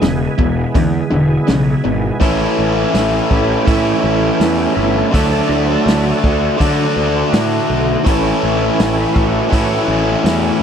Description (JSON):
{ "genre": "blues rock power trio and southern rock", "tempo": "82 BPM", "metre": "4/4", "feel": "straight", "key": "A major", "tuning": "A4 = 440 Hz", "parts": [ { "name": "overdriven tonewheel organ", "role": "sustained chords", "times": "0.0-10.6 s", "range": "E3 to A4", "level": "-20 LUFS", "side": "right 5 dB", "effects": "slow rotary speaker, chorus vibrato" }, { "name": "overdriven electric guitar", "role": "riff", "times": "0.0-10.6 s", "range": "E2 to A4", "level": "-15 LUFS", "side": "left 2 dB", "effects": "none" }, { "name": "fuzz picked electric bass", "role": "bass", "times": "0.0-10.6 s", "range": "E1 to D3", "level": "-19 LUFS", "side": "equal", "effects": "overdrive" }, { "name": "vintage drum kit", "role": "drums", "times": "0.0-10.4 s", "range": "hi-hat, kick drum, snare drum", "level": "-16 LUFS", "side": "equal", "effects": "none" } ], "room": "light reverb", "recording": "dry, close 1970s-style studio recording", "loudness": "-12 LUFS", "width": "side -8 dB against mid", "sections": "0.0-2.2 A section; 2.2-10.6 B section", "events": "tonewheel organ solo 2.2-10.6", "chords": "0.0 E; 2.2 A; 5.1 D; 8.1 A", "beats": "0.01 0.74 1.47 | 2.20 2.94 3.67 4.40 | 5.13 5.87 6.60 7.33 | 8.06 8.79 9.53 10.26" }